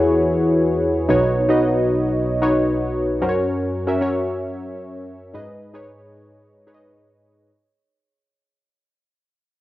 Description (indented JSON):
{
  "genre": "pop",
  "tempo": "113 BPM",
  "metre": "4/4",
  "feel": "straight",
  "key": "unclear",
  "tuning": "A4 = 440 Hz",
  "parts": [
    { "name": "warm analog keys", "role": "solo", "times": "0.0-7.5 s", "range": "B1 to E5", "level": "-18 LUFS", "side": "equal", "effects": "chorus, cassette tape" }
  ],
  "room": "moderate spring reverb, RT60 2.5 s",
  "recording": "home recording on cassette",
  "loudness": "-17 LUFS",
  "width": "side -16 dB against mid",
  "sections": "0.0-7.5 A section",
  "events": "fade-out 0.0-7.5",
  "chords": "0.0 Eadd9; 1.1 Badd9; 3.2 F#; 5.3 G#m",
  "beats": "0.04 0.57 | 1.10 1.63 2.16 2.69 | 3.22 3.75 4.29 4.82 | 5.35 5.88 6.41 6.94"
}